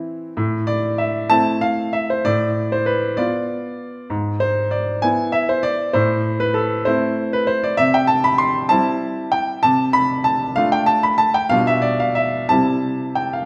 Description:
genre	classical-period piano sonatina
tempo	64 BPM (dotted quarters)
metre	6/8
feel	rubato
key	A minor, C major from 7.8 s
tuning	A4 = 440 Hz
part	clear grand piano	solo	0.0-13.5 s	G#2 to C6	-19 LUFS	equal	none
room	wet recital hall reverb, RT60 1.6 s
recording	none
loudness	-19 LUFS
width	mono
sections	0.4-13.5 A section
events	none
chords	0.4 Am; 2.3 Bm7b5/A; 4.1 E/G#; 5.9 Am; 7.8 C; 9.6 Dm7/C; 11.5 G7/B; 12.5 C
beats	| 0.37 1.31 | 2.25 3.18 | 4.10 5.03 | 5.95 6.86 | 7.79 8.70 | 9.63 10.57 | 11.51 12.50

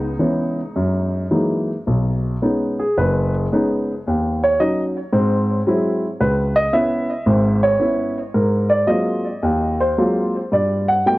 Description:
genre	solo jazz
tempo	110 BPM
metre	4/4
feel	swing 68% on 8ths, rubato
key	B major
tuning	A4 = 441 Hz
part	dark baby grand piano	solo	0.0-11.2 s	F#1 to G5	-16 LUFS	equal	tape echo
room	moderate studio reverb, RT60 0.6 s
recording	worn, warbling old tape, cassette tape, warbly pitch drift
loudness	-16 LUFS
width	side -19 dB against mid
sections	0.0-1.9 A section; 1.9-11.2 B section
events	grand piano solo 1.9-11.2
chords	0.0 C#m7; 0.8 F#13; 1.9 B69; 4.1 D#m7; 5.1 G#7b13; 6.2 C#m7; 8.3 G#13; 10.5 Gmaj9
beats	0.20 0.75 1.31 | 1.88 2.42 2.97 3.51 | 4.05 4.59 5.13 5.66 | 6.20 6.73 7.27 7.80 | 8.34 8.88 9.43 9.98 | 10.53 11.07

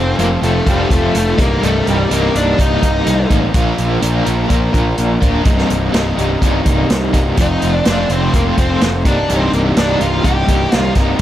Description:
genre	psychedelic rock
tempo	125 BPM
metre	4/4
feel	straight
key	C dorian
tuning	A4 = 439 Hz
part	octave-fuzz lead guitar	melody	0.0-3.3, 7.4-10.9 s	G3 to G4	-19 LUFS	left 1 dB	distortion, analog delay
part	bright studio string section	sustained chords	0.0-11.2 s	F4 to C6	-29 LUFS	right 3 dB	none
part	crunchy overdriven guitar	riff	0.0-11.2 s	C2 to Bb4	-16 LUFS	equal	tremolo
part	fuzz picked electric bass	bass	0.0-11.1 s	C1 to C2	-18 LUFS	equal	overdrive
part	vintage drum kit	drums	0.2-11.2 s	hi-hat, kick drum, snare drum	-17 LUFS	equal	none
room	small room ambience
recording	none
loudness	-12 LUFS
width	side -12 dB against mid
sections	0.0-11.2 A section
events	none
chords	0.0 F; 1.4 Cm7; 3.5 Bbadd9; 5.5 Cm7; 7.4 F; 9.1 Cm7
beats	0.18 0.66 1.14 | 1.62 2.10 2.59 3.07 | 3.55 4.03 4.51 4.99 | 5.47 5.95 6.42 6.90 | 7.38 7.86 8.34 8.82 | 9.29 9.77 10.25 10.73 | 11.21

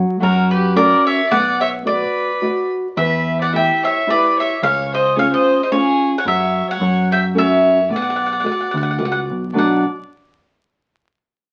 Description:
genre	italian folk, Italian serenade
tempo	110 BPM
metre	3/4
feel	swing 54% on 8ths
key	B minor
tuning	A4 = 439 Hz
part	nylon-string guitar	accompaniment	0.0-9.8 s	B2 to D5	-22 LUFS	equal	none
part	deep dub picked electric bass	bass	0.0-9.8 s	B1 to F#2	-24 LUFS	equal	none
part	mandolin	melody	0.2-9.8 s	A#4 to G5	-20 LUFS	equal	none
part	bright violin	second line	0.2-9.8 s	F#4 to E5	-24 LUFS	equal	none
room	wet studio reverb, RT60 0.6 s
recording	very old 78 rpm record, vinyl crackle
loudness	-17 LUFS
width	mono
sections	0.0-3.0 A section; 3.0-9.6 B section; 9.6-11.2 C section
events	none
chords	0.2 F#; 1.3 Bm; 3.0 Em; 4.6 C#; 6.3 F#5; 6.8 F#; 7.9 Bm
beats	0.22 0.77 | 1.32 1.87 2.42 | 2.98 3.53 4.07 | 4.62 5.17 5.71 | 6.25 6.80 7.35 | 7.89 8.44 9.00 | 9.55

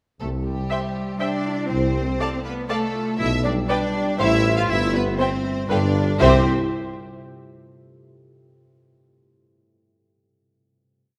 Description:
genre	cinematic, playful, whimsical film cue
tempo	120 BPM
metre	3/4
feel	straight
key	C major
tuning	A4 = 440 Hz
part	rich studio violin section	melody	0.2-6.5 s	G4 to F5	-31 LUFS	equal	none
part	concert harp	arpeggios	0.2-6.5 s	G2 to F5	-30 LUFS	equal	none
part	mellow tuba	bass	0.2-6.4 s	G1 to C2	-28 LUFS	equal	none
part	rich studio cello section	bass	0.2-6.5 s	G3 to F4	-28 LUFS	equal	none
part	warm studio double bass section	bass	0.2-6.5 s	G1 to C2	-28 LUFS	equal	none
part	rich studio violin section	second line	0.7-6.5 s	C5 to A5	-30 LUFS	equal	none
part	rich studio viola section	accompaniment	0.7-6.5 s	G4 to E5	-29 LUFS	equal	none
room	wet concert hall reverb, RT60 1.8 s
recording	none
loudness	-22 LUFS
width	mono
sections	0.2-6.2 A section; 6.2-7.7 final chord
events	none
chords	0.2 C; 1.7 Dm7/C; 3.2 G/B; 4.2 F/A; 4.7 C/G; 5.7 G7sus2; 6.2 C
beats	| 0.21 0.71 1.21 | 1.71 2.20 2.70 | 3.20 3.70 4.20 | 4.70 5.20 5.70 | 6.21

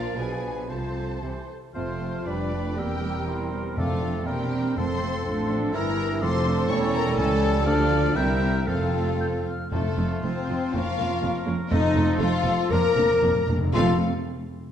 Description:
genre	quick classical-period movement for symphony orchestra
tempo	111-127 BPM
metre	2/4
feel	rubato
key	F major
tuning	A4 = 440 Hz
part	warm studio violin section	melody	0.0-14.0 s	A4 to C#6	-34 LUFS	left 4 dB	none
part	clear oboe	second line	0.0-14.0 s	F4 to D5	-37 LUFS	right 2 dB	none
part	warm clarinet	second line	0.0-14.0 s	A3 to Bb4	-33 LUFS	left 2 dB	none
part	warm studio violin section	second line	0.0-14.0 s	A3 to F5	-34 LUFS	left 5 dB	none
part	clear bassoon	accompaniment	0.0-14.0 s	E3 to A3	-36 LUFS	right 1 dB	none
part	dark studio viola section	accompaniment	0.0-14.0 s	E3 to C5	-32 LUFS	right 2 dB	none
part	warm French horn section	sustained chords	0.0-14.0 s	E3 to Bb4	-30 LUFS	left 3 dB	none
part	warm trumpet	stabs	0.0-9.5 s	A4 to C5	-32 LUFS	right 1 dB	none
part	rich studio cello section	bass	0.0-14.0 s	C2 to C3	-30 LUFS	right 2 dB	none
part	warm studio double bass section	bass	0.0-14.0 s	E1 to D2	-30 LUFS	right 3 dB	none
part	mellow silver concert flute	second line	0.2-14.0 s	G#5 to G6	-36 LUFS	left 2 dB	none
part	timpani	percussion	3.8-5.5, 8.7-14.0 s	F2	-30 LUFS	equal	none
room	wet scoring stage reverb, RT60 1.5 s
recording	dark, warm production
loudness	-22 LUFS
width	side -9 dB against mid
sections	0.0-1.8 A section; 1.8-9.7 B section; 9.7-13.7 C section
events	timpani fill 12.7-13.7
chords	0.2 Bdim7; 0.7 F/C; 1.2 C; 1.8 F; 2.3 G7/F; 2.8 C7/E; 3.8 F; 4.3 C7/E; 4.8 F; 5.7 Edim/G; 6.2 F; 6.7 A7/E; 7.7 Dm; 8.2 C7; 8.7 F; 9.7 F7; 10.7 Bbm/F; 11.7 F7; 12.7 Bb/F; 13.7 F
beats	0.18 | 0.70 1.23 | 1.75 2.26 | 2.79 3.29 | 3.78 4.27 | 4.77 5.26 | 5.75 6.22 | 6.70 7.19 | 7.67 8.16 | 8.68 9.21 | 9.72 10.23 | 10.75 11.23 | 11.71 12.20 | 12.71 13.22 | 13.75

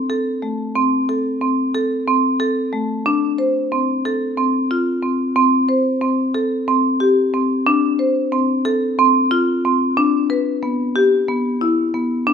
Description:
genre	contemporary instrumental, contemporary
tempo	182 BPM (eighths)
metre	7/8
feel	straight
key	A minor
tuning	A4 = 440 Hz
part	marimba with medium mallets	solo	0.0-12.3 s	A3 to C5	-16 LUFS	equal	none
room	moderate recital hall reverb, RT60 1.5 s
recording	minimal, uncompressed stereo recording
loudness	-16 LUFS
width	side -7 dB against mid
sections	0.0-3.1 A section; 3.1-12.3 B section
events	none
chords	none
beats	0.10 0.43 | 0.76 1.09 1.42 1.75 2.08 2.40 2.73 | 3.06 3.39 3.72 4.05 4.38 4.71 5.04 | 5.37 5.70 6.03 6.35 6.68 7.01 7.34 | 7.67 8.00 8.33 8.65 8.98 9.31 9.64 | 9.97 10.30 10.63 10.96 11.28 11.61 11.94 | 12.27

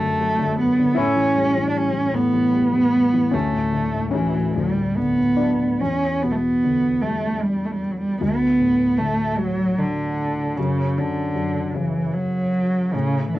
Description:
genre	celtic folk, Celtic slow air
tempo	51 BPM (dotted quarters)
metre	6/8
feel	rubato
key	E dorian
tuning	A4 = 440 Hz
part	dark cello	melody	0.0-13.4 s	C#3 to D4	-19 LUFS	right 1 dB	none
part	steel pan	second line	0.0-5.8 s	C#4 to E4	-28 LUFS	left 6 dB	cassette tape
part	felt-muted upright piano	accompaniment	0.0-13.4 s	D2 to F#4	-25 LUFS	left 4 dB	cassette tape
room	moderate booth ambience, RT60 0.2 s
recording	home recording on cassette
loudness	-18 LUFS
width	side -15 dB against mid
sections	0.0-5.8 A section; 5.8-13.4 B section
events	none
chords	0.0 D/F#; 1.0 A7; 3.3 Dmaj7; 5.8 Em7; 8.2 Bm7/D; 10.6 F#5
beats	| 0.96 2.15 | 3.34 4.55 | 5.80 7.03 | 8.22 9.39 | 10.58 11.75 | 12.94

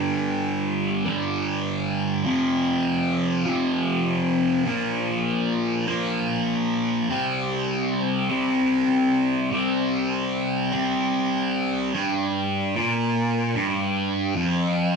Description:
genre	rock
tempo	50 BPM (dotted quarters)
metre	6/8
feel	straight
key	G minor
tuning	A4 = 439 Hz
part	thick fuzz guitar	solo	0.0-15.0 s	F2 to C4	-21 LUFS	equal	distortion, phaser
room	wet studio reverb, RT60 0.6 s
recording	band playing live in one room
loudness	-21 LUFS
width	side -5 dB against mid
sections	0.0-11.9 A section; 11.9-15.0 B section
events	none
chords	0.0 G5; 2.3 F5; 4.7 Bb5; 7.1 C5; 11.9 Gm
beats	1.06 | 2.27 3.48 | 4.68 5.89 | 7.10 8.31 | 9.52 10.73 | 11.94 13.15 | 14.36

